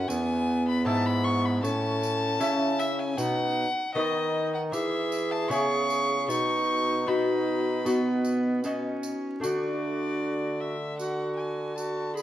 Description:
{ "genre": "classical, renaissance-style consort dance", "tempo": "77 BPM", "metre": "4/4", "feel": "straight", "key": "unclear", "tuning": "A4 = 443 Hz", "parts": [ { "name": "warm violin", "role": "melody", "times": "0.0-12.2 s", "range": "D5 to C#6", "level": "-30 LUFS", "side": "left 2 dB", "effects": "none" }, { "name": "bright bass recorder", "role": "second line", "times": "0.0-12.2 s", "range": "B3 to G#4", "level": "-30 LUFS", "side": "right 2 dB", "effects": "none" }, { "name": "lute", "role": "accompaniment", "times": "0.0-12.2 s", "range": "E2 to E5", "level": "-32 LUFS", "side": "left 2 dB", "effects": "none" }, { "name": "mellow bassoon", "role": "bass", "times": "0.0-12.2 s", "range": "E2 to E3", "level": "-31 LUFS", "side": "equal", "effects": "none" }, { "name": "tambourine", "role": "percussion", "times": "0.1-12.2 s", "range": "none", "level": "-45 LUFS", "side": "right 3 dB", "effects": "none" } ], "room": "wet stone room reverb, RT60 1.4 s", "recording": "vinyl crackle", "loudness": "-25 LUFS", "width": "side -12 dB against mid", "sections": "0.0-9.4 A section; 9.4-12.2 B section", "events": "none", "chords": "0.1 E; 1.6 A; 3.2 B; 4.7 E; 6.3 B; 9.4 D", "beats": "| 0.09 0.86 1.63 2.40 | 3.18 3.95 4.73 5.51 | 6.29 7.08 7.86 8.65 | 9.44 10.22 10.99 11.77" }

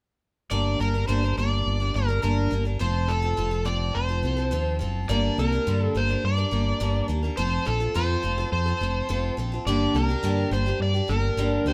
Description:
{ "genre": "folk rock and heartland rock", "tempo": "105 BPM", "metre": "4/4", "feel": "straight", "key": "G minor", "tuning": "A4 = 435 Hz", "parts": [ { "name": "overdriven slide guitar", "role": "melody", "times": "0.5-11.7 s", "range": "A4 to D5", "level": "-31 LUFS", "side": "equal", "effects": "none" }, { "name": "picked steel-string acoustic guitar", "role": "accompaniment", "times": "0.5-11.7 s", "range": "G2 to Bb4", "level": "-31 LUFS", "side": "equal", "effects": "none" }, { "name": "fingered electric bass", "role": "bass", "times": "0.5-11.7 s", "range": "F1 to G2", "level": "-28 LUFS", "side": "equal", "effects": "none" } ], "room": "moderate large studio reverb, RT60 0.9 s", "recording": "band playing live in one room", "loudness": "-25 LUFS", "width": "mono", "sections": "0.5-5.1 A section; 5.1-11.7 B section", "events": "none", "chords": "0.5 Gm; 2.8 F; 5.1 Gm; 7.4 F; 9.7 Gm", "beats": "| 0.51 1.08 1.66 2.23 | 2.80 3.38 3.95 4.52 | 5.09 5.67 6.24 6.81 | 7.38 7.95 8.52 9.10 | 9.67 10.24 10.81 11.38" }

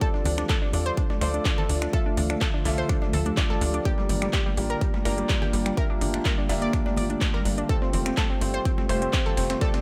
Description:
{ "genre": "progressive house", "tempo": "125 BPM", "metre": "4/4", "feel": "straight", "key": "unclear", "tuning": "A4 = 440 Hz", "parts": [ { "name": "shimmering ambient pad", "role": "sustained chords", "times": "0.1-9.8 s", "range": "C3 to G4", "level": "-36 LUFS", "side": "equal", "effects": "chorus, built-in reverb, vintage 12-bit sampler grit, sidechain pumping" }, { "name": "analog pluck", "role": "arpeggios", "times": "0.0-9.8 s", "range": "G3 to D5", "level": "-34 LUFS", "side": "equal", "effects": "chorus, sidechain pumping, tape echo" }, { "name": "dark baby grand piano", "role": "stabs", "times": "0.0-9.8 s", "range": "A3 to E5", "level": "-33 LUFS", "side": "equal", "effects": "sidechain pumping, tape echo" }, { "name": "dusty soul sampler-style drum kit", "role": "drums", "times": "0.0-9.8 s", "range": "hi-hat, snare drum", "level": "-45 LUFS", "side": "equal", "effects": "none" }, { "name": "electronic kick drum", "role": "drums", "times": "0.0-9.7 s", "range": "none", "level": "-28 LUFS", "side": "equal", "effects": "none" }, { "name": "house drum kit", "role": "drums", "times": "0.0-9.7 s", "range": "finger snaps, handclaps, hi-hat", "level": "-34 LUFS", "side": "equal", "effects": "none" }, { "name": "congas", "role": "percussion", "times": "0.2-9.4 s", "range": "none", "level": "-39 LUFS", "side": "equal", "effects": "sidechain pumping on perc" }, { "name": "tight sequencer bass", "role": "bass", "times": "0.3-9.6 s", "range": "F1 to E2", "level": "-30 LUFS", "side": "equal", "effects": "sidechain pumping" } ], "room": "digital ambience", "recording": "none", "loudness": "-25 LUFS", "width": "mono", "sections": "0.0-9.8 A section", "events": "none", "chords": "0.0 Dm; 3.9 Gm7; 7.7 Fadd9", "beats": "| 0.01 0.49 0.97 1.45 | 1.93 2.41 2.89 3.37 | 3.85 4.33 4.81 5.29 | 5.77 6.25 6.73 7.21 | 7.69 8.17 8.65 9.13 | 9.61" }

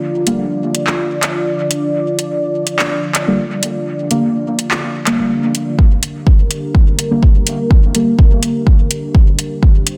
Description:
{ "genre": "dub techno", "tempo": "125 BPM", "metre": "4/4", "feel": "straight", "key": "G minor", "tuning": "A4 = 440 Hz", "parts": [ { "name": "dark analog pad", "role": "sustained chords", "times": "0.0-10.0 s", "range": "D4 to D5", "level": "-22 LUFS", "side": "equal", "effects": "chorus, sidechain pumping" }, { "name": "deep mellow chord stab", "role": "stabs", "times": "0.3-8.1 s", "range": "D3 to Bb3", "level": "-20 LUFS", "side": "equal", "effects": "chorus, phaser, sidechain pumping, dub echo" }, { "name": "deep house drum kit", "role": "drums", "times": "0.3-10.0 s", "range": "handclaps, hi-hat", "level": "-20 LUFS", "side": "equal", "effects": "overdrive" }, { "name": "electronic kick drum", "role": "drums", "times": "5.8-9.7 s", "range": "none", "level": "-11 LUFS", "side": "equal", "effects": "overdrive" } ], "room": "moderate echo chamber reverb, RT60 1.9 s", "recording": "dense, heavily limited modern master", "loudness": "-15 LUFS", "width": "mono", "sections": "0.0-5.8 A section; 5.8-10.0 B section", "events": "filter sweep on synth stab 5.8-10.0", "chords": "0.0 Gm", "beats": "| 0.03 0.51 0.99 1.47 | 1.95 2.43 2.91 3.39 | 3.87 4.35 4.83 5.31 | 5.79 6.27 6.75 7.23 | 7.71 8.19 8.67 9.15 | 9.63" }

